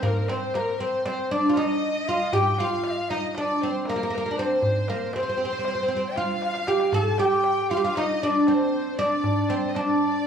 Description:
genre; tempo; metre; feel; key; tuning
Turkish makam ensemble; 234 BPM (eighths); 9/8; straight; unclear; A4 = 439 Hz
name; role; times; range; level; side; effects
oud; melody; 0.0-10.3 s; Bb3 to A4-30c; -23 LUFS; right 1 dB; none
breathy mellow ney; second line; 0.0-10.3 s; Bb4 to A5-31c; -31 LUFS; left 4 dB; none
warm studio violin section; second line; 0.0-10.3 s; Bb4 to A5-30c; -31 LUFS; left 1 dB; none
darbuka; percussion; 0.0-9.9 s; none; -30 LUFS; equal; none
room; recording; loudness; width
wet large studio reverb, RT60 1.3 s; band playing live in one room; -22 LUFS; side -7 dB against mid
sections
0.0-10.3 A section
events
drum fill 6.4-6.9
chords
none

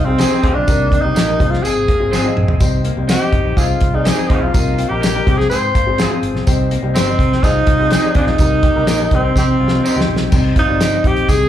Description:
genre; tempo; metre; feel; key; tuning
uptempo 1960s-style soul; 124 BPM; 4/4; straight; C minor; A4 = 438 Hz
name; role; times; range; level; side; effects
breathy tenor saxophone; melody; 0.0-11.5 s; C4 to C5; -17 LUFS; equal; slapback echo
warm upright piano; accompaniment; 0.0-11.5 s; C3 to Eb5; -23 LUFS; left 4 dB; slapback echo
electric guitar through a small old amp; riff; 0.0-11.5 s; Bb3 to G4; -27 LUFS; left 7 dB; lush chorus, slapback echo
fingered electric bass; bass; 0.0-11.5 s; G1 to C3; -19 LUFS; equal; none
clear horn section; second line; 0.2-10.3 s; Eb3 to Ab4; -28 LUFS; right 1 dB; slapback echo
electric guitar through a small old amp; stabs; 0.2-10.9 s; Bb3 to C5; -26 LUFS; right 2 dB; slapback echo, tape echo
warm soul drum kit; drums; 0.2-11.4 s; crash cymbal, hi-hat, kick drum, snare drum, toms; -17 LUFS; equal; none
tambourine; percussion; 0.2-11.4 s; none; -30 LUFS; right 2 dB; none
room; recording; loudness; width
light reverb, small room ambience; live gig heard through the venue's PA, club reverb; -12 LUFS; side -11 dB against mid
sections
0.0-10.3 A section; 10.3-11.5 B section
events
drum fill 2.1-2.6, 9.4-10.3; tenor saxophone solo 10.3-11.5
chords
0.0 Ab/C; 0.7 Eb/C; 1.4 Fm; 2.6 Cm; 3.6 Ab/C; 4.5 Eb/C; 5.3 Fm; 6.5 Cm; 7.4 Ab/C; 8.4 Eb/C; 9.1 Cm

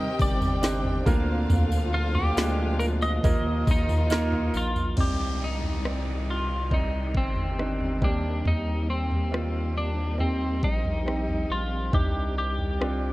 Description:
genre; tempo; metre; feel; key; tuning
pop ballad; 69 BPM; 4/4; straight; Eb major; A4 = 445 Hz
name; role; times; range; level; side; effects
twelve-string electric guitar; melody; 0.0-13.1 s; C4 to Eb5; -31 LUFS; equal; none
warm studio violin section; second line; 0.0-4.5 s; Eb5 to G5; -38 LUFS; left 1 dB; digital delay
clear concert grand piano; accompaniment; 0.0-13.1 s; C3 to D5; -32 LUFS; right 2 dB; none
warm studio string section; sustained chords; 0.0-13.1 s; Bb2 to D5; -35 LUFS; left 1 dB; none
saturated sub bass; bass; 0.2-13.1 s; G1 to Eb2; -28 LUFS; equal; none
smooth R&B drum kit; drums; 0.2-13.0 s; crash cymbal, kick drum, rim click, snare drum, toms; -27 LUFS; equal; none
tambourine; percussion; 0.2-5.0 s; none; -44 LUFS; left 6 dB; none
downlifter; sound effects; 5.0-11.9 s; none; -41 LUFS; left 1 dB; none
room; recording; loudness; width
small room reverb; none; -23 LUFS; side -18 dB against mid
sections
0.0-5.0 A section; 5.0-13.1 B section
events
none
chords
0.0 Cmadd9; 1.1 Bb/D; 3.2 Ebsus2; 5.0 Cmadd9; 8.0 Eb6; 11.9 Cmadd9

